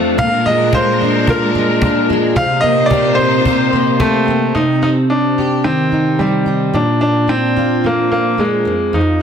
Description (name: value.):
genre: acoustic pop.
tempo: 110 BPM.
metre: 4/4.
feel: swing 55% on 16ths.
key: C minor.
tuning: A4 = 439 Hz.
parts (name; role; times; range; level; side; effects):
fingerpicked plugged-in steel-string acoustic guitar; accompaniment; 0.0-9.2 s; F2 to G4; -15 LUFS; equal; double-tracked left and right, plate reverb.
rich studio string section; sustained chords; 0.0-4.5 s; Bb2 to C5; -21 LUFS; left 1 dB; plate reverb.
bright upright piano; melody; 0.2-9.2 s; G3 to F5; -15 LUFS; equal; plate reverb, ping-pong delay.
cajon; drums; 0.2-4.1 s; none; -18 LUFS; equal; none.
room: wet studio reverb, RT60 0.6 s.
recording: dense, heavily limited modern master.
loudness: -12 LUFS.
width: side -7 dB against mid.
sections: 0.0-4.5 A section; 4.5-9.2 B section.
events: none.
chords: 0.2 Bb7; 2.4 Cm7; 4.5 Cm; 6.7 Bb; 8.7 Fm.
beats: | 0.18 0.72 1.27 1.81 | 2.36 2.90 3.45 4.00 | 4.54 5.09 5.64 6.19 | 6.74 7.29 7.84 8.38 | 8.94.